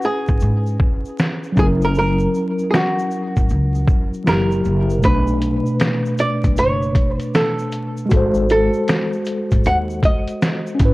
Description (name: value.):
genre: lo-fi hip hop.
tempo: 78 BPM.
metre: 4/4.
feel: swing 65% on 16ths.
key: unclear.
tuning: A4 = 441 Hz.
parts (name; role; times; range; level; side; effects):
archtop guitar, miked and amplified; melody; 0.0-10.8 s; F#4 to F#5; -22 LUFS; right 1 dB; low-pass filter.
mellow tine electric piano; accompaniment; 0.0-10.9 s; B2 to B#4; -21 LUFS; left 1 dB; medium stereo tremolo, cassette tape, low-pass filter.
egg shaker; percussion; 0.0-10.9 s; none; -48 LUFS; left 4 dB; none.
upright bass; bass; 0.3-10.9 s; F#1 to G#2; -20 LUFS; equal; transformer saturation.
trip hop sampler-style drum kit; drums; 0.3-10.9 s; hi-hat, kick drum, snare drum; -18 LUFS; equal; none.
room: light reverb.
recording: worn, warbling old tape, cassette tape, vinyl crackle, warbly pitch drift.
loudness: -16 LUFS.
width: side -20 dB against mid.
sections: 0.0-10.9 A section.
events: break 0.0-5.0.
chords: 0.0 C#m7; 1.6 F#7; 4.3 F#7b9; 5.0 Bm9; 8.1 G#7b9.